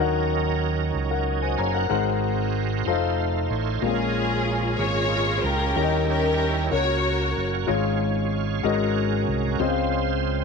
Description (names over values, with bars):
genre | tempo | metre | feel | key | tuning
slow gospel | 62 BPM (dotted quarters) | 6/8 | straight | Db major | A4 = 439 Hz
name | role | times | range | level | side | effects
warm concert grand piano | accompaniment | 0.0-10.4 s | Ab2 to Bb5 | -26 LUFS | left 10 dB | none
bright tonewheel organ | sustained chords | 0.0-10.4 s | Eb3 to Gb5 | -29 LUFS | right 13 dB | slow rotary speaker, overdrive, chorus vibrato
fingered electric bass | bass | 0.0-10.4 s | F1 to Eb2 | -27 LUFS | right 3 dB | none
rich studio string section | melody | 3.8-7.6 s | Db4 to Db5 | -25 LUFS | left 2 dB | none
room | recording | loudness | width
light reverb, small room ambience | 1960s-style stereo with parts hard left and right | -21 LUFS | side -5 dB against mid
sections
0.0-10.4 A section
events
tonewheel organ fill 2.9-3.8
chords
0.0 Ebm7; 1.9 Ab9; 2.9 F7; 3.8 Bbm7; 5.8 Eb7b9; 6.7 Gb/Db; 7.7 Db/Ab; 8.6 Ab9sus4; 9.6 Dbmaj7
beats
0.94 | 1.91 2.87 | 3.83 4.79 | 5.76 6.72 | 7.68 8.64 | 9.61